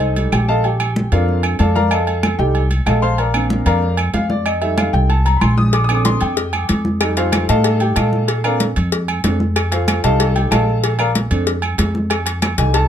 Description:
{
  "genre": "latin, salsa",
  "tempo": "188 BPM",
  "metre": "4/4",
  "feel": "straight",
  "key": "Bb major",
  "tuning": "A4 = 440 Hz",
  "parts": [
    { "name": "warm grand piano", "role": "accompaniment", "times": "0.0-12.9 s", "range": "G3 to Eb6", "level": "-19 LUFS", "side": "left 1 dB", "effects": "none" },
    { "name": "upright bass", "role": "bass", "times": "0.0-12.9 s", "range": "Bb1 to Bb2", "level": "-18 LUFS", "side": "equal", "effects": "none" },
    { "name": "agogo bells and timbales", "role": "percussion", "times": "0.0-12.9 s", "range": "none", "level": "-25 LUFS", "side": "right 7 dB", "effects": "none" },
    { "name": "congas", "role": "percussion", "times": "0.0-12.9 s", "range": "none", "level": "-22 LUFS", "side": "equal", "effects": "none" },
    { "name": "claves", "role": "percussion", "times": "0.3-12.6 s", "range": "none", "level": "-27 LUFS", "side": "right 2 dB", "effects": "none" },
    { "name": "cowbell", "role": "percussion", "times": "5.7-12.9 s", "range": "none", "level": "-23 LUFS", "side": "left 6 dB", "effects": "none" }
  ],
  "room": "light reverb",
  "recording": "close, detailed microphones",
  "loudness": "-14 LUFS",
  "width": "side -9 dB against mid",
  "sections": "0.0-12.9 A section",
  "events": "grand piano solo 0.0-12.9",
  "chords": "0.0 F7; 0.6 Bbmaj7; 1.9 F7; 3.2 Bb; 4.5 F7; 5.7 Bbmaj7; 7.0 F7; 8.3 Bbmaj7; 9.6 F7; 10.8 Bbmaj7; 12.1 F7"
}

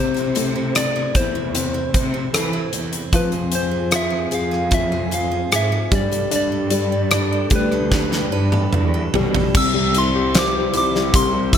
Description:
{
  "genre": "pop ballad",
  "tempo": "76 BPM",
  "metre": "4/4",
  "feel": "straight",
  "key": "C major",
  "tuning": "A4 = 441 Hz",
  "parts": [
    { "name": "soft struck synth lead", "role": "melody", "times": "0.0-11.6 s", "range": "B4 to E6", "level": "-24 LUFS", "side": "equal", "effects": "chorus, ping-pong delay" },
    { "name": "warm concert grand piano", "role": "accompaniment", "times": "0.0-11.6 s", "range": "C3 to C5", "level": "-24 LUFS", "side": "left 4 dB", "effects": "none" },
    { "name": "picked steel-string acoustic guitar", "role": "arpeggios", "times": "0.0-11.6 s", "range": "C3 to C5", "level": "-30 LUFS", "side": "right 10 dB", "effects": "none" },
    { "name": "warm symphonic cello section", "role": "bass", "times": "0.0-11.6 s", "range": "C2 to E3", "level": "-24 LUFS", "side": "equal", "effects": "none" },
    { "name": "huge arena drum kit", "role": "drums", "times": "0.2-11.6 s", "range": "crash cymbal, hi-hat, kick drum, rim click, snare drum, toms", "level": "-21 LUFS", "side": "equal", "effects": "none" },
    { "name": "chorused pulse-width pad", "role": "sustained chords", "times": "3.1-11.6 s", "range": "C4 to B5", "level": "-30 LUFS", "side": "equal", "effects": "none" }
  ],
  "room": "little or no reverb",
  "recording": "none",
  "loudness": "-17 LUFS",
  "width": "side -8 dB against mid",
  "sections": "0.0-9.6 A section; 9.6-11.6 B section",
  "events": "drum fill 7.9-9.6",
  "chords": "0.0 Am; 3.1 Fm; 5.9 Gadd9; 9.6 C"
}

